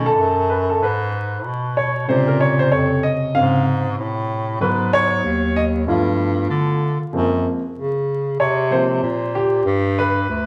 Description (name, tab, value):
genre	hip hop, jazz-hop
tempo	95 BPM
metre	4/4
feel	swing 60% on 16ths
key	unclear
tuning	A4 = 440 Hz
part	warm baby grand piano	accompaniment	0.0-10.5 s	C3 to F5	-21 LUFS	equal	none
part	warm bass clarinet	bass	0.0-10.5 s	D2 to D3	-23 LUFS	equal	none
room	wet large studio reverb, RT60 1.2 s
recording	band playing live in one room, vinyl crackle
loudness	-19 LUFS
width	mono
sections	0.0-10.5 A section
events	grand piano solo 0.0-10.5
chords	0.0 B7sus2; 2.1 Bbm7; 4.6 Abm7; 5.9 G13; 7.1 Gbmaj9#11; 9.7 G